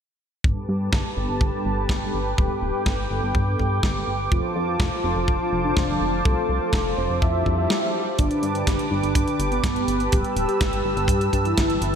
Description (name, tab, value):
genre	italo disco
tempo	124 BPM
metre	4/4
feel	straight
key	G mixolydian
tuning	A4 = 441 Hz
part	warm analog pad	sustained chords	0.4-12.0 s	F4 to E6	-26 LUFS	equal	chorus
part	mellow synth brass	stabs	0.4-8.0 s	G2 to A4	-32 LUFS	right 1 dB	chorus, diffuse ambient delay
part	chorused synth bass	bass	0.4-12.0 s	D1 to G2	-26 LUFS	equal	tube saturation
part	kick drum	drums	0.4-11.7 s	none	-23 LUFS	equal	none
part	clean 12-bit digital drum machine	drums	0.9-11.9 s	hi-hat, snare drum	-30 LUFS	equal	none
part	wide unison lead	melody	4.3-12.0 s	B3 to E5	-26 LUFS	equal	diffuse ambient delay
part	swell	sound effects	7.4-8.2 s	none	-33 LUFS	left 1 dB	none
room	moderate lush hall reverb, RT60 2.5 s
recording	dreamy mix soaked in reverb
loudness	-20 LUFS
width	side -8 dB against mid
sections	0.4-8.2 A section; 8.2-12.0 B section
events	swell 7.4-8.2; break 7.7-8.2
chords	0.4 Gadd9; 4.3 F6; 8.2 Gadd9